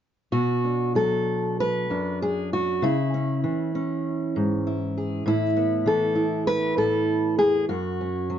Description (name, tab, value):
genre	folk, solo fingerstyle acoustic guitar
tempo	98 BPM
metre	4/4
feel	rubato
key	B dorian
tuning	A4 = 435 Hz
part	fingerpicked steel-string acoustic guitar	solo	0.3-8.4 s	F#2 to B4	-22 LUFS	equal	none
room	light reverb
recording	dark, warm production, nothing above 7.5 kHz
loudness	-22 LUFS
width	side -9 dB against mid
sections	0.3-8.4 A section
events	none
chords	0.3 Bm; 2.8 C#m; 5.3 Asus2; 7.7 F#5